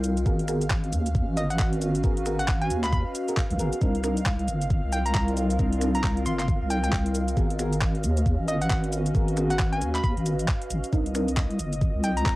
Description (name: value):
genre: UK garage, two-step garage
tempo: 135 BPM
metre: 4/4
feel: swing 60% on 16ths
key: unclear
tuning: A4 = 440 Hz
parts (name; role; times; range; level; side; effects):
- hollow square pluck; melody; 0.0-12.3 s; Eb5 to C6; -30 LUFS; equal; chorus, cassette tape
- airy breathy pad; sustained chords; 0.0-12.4 s; Eb5 to F5; -37 LUFS; right 1 dB; chorus, sidechain pumping, cassette tape
- deep soft wobble bass; bass; 0.0-12.4 s; G1 to Eb2; -26 LUFS; equal; chorus
- garage drum kit; drums; 0.0-12.4 s; cabasa, finger snaps, handclaps, hi-hat; -33 LUFS; equal; cassette tape
- warbly tape-like pad; texture; 0.0-12.4 s; C4 to Eb5; -34 LUFS; equal; chorus, built-in reverb, phaser, sidechain pumping, cassette tape
- deep mellow chord stab; stabs; 0.3-11.3 s; Cb4 to Bb4; -31 LUFS; right 1 dB; chorus, phaser, cassette tape, tape echo
- electronic kick drum; drums; 0.3-12.4 s; none; -25 LUFS; equal; cassette tape
room: light reverb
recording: home recording on cassette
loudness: -23 LUFS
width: side -19 dB against mid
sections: 0.0-12.4 A section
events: none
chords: 0.3 Abm9; 3.8 Cm9; 7.4 Abm9; 10.9 Cm9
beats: | 0.26 0.70 1.15 1.59 | 2.04 2.48 2.93 3.37 | 3.81 4.26 4.70 5.15 | 5.59 6.04 6.48 6.93 | 7.37 7.82 8.26 8.70 | 9.15 9.59 10.04 10.48 | 10.93 11.37 11.81 12.26